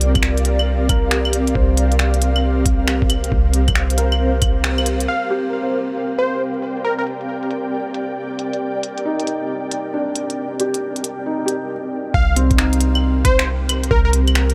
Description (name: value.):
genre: future garage.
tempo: 136 BPM.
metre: 4/4.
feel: swing 65% on 16ths.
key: C minor.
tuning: A4 = 440 Hz.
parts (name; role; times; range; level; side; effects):
felt-muted upright piano; accompaniment; 0.0-14.5 s; C4 to C5; -28 LUFS; equal; sidechain pumping, digital delay.
ethereal airy pad; sustained chords; 0.0-14.5 s; C4 to G5; -25 LUFS; equal; ensemble chorus, built-in reverb, tremolo, sidechain pumping.
soft 808-style bass; bass; 0.0-5.1, 12.1-14.5 s; C2; -20 LUFS; equal; sidechain pumping.
organic electronic drum kit; drums; 0.0-14.5 s; claves, finger snaps, hi-hat; -25 LUFS; equal; low-pass filter on hats, low-pass filter on snare, low-pass filter on perc, low-pass filter on room.
electronic kick drum; drums; 0.2-4.5, 12.1-14.0 s; none; -20 LUFS; equal; none.
plucky unison lead; melody; 5.1-7.0, 12.1-14.1 s; Bb4 to F5; -26 LUFS; equal; delay.
room: light reverb.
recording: none.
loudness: -19 LUFS.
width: mono.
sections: 0.0-5.1 A section; 5.1-12.1 B section; 12.1-14.5 C section.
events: band accent 4.6; stop 11.7-12.1.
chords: 0.0 Gm7/C; 5.1 Cm7.